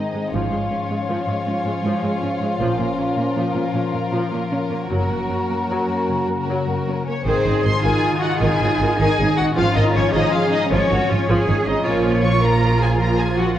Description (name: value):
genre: cinematic, heroic adventure film score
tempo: 105 BPM (dotted quarters)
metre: 12/8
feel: straight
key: unclear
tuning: A4 = 441 Hz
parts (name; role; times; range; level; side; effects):
- rich symphonic violin section; melody; 0.0-13.6 s; Bb4 to Db6; -26 LUFS; left 2 dB; none
- dark clarinet; second line; 0.0-7.0 s; C4 to Db4; -35 LUFS; left 1 dB; none
- mellow hollow concert flute; second line; 0.0-7.0 s; Eb5 to Bb5; -28 LUFS; left 1 dB; none
- warm symphonic violin section; second line; 0.0-13.6 s; C4 to Db5; -26 LUFS; left 1 dB; none
- dark symphonic viola section; accompaniment; 0.0-13.6 s; Db3 to Eb4; -25 LUFS; right 1 dB; none
- dark French horn section; sustained chords; 0.0-7.0 s; Eb3 to Db4; -26 LUFS; left 2 dB; none
- concert harp; arpeggios; 0.0-13.6 s; Gb2 to Db5; -27 LUFS; left 5 dB; none
- rich symphonic cello section; bass; 0.0-13.6 s; Gb2 to Ab4; -25 LUFS; right 2 dB; none
- warm symphonic double bass section; bass; 0.3-13.5 s; Gb1 to Bb1; -22 LUFS; right 2 dB; none
room: moderate scoring stage reverb, RT60 1.5 s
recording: worn, warbling old tape, cassette tape, warbly pitch drift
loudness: -17 LUFS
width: side -11 dB against mid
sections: 0.0-7.3 A section; 7.3-13.6 B section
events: none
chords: 0.3 Db/Ab; 2.6 Bbm; 4.9 Gb; 7.3 Ab; 9.6 Db/Ab; 11.9 Bbm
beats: | 0.33 0.90 1.47 2.03 | 2.60 3.17 3.74 4.32 | 4.90 5.49 6.08 6.67 | 7.26 7.84 8.42 8.99 | 9.57 10.14 10.71 11.28 | 11.85 12.42 12.99 13.56